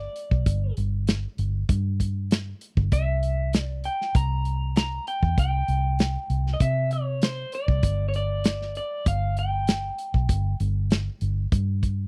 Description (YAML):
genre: straight-eighth soul blues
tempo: 98 BPM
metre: 4/4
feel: straight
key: unclear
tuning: A4 = 440 Hz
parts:
  - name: electric guitar through a small old amp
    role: melody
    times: 0.0-10.6 s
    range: C5 to Bb5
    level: -32 LUFS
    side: equal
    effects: slapback echo
  - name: vintage muted fingered electric bass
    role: bass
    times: 0.0-12.1 s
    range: G1 to C3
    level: -27 LUFS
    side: equal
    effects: none
  - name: warm soul drum kit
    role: drums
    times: 0.2-12.0 s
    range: hi-hat, kick drum, snare drum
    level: -25 LUFS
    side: equal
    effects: none
room: small room ambience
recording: dry, close 1970s-style studio recording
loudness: -25 LUFS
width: mono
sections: 0.0-12.1 A section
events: none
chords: 0.0 G5; 2.9 C; 7.8 G5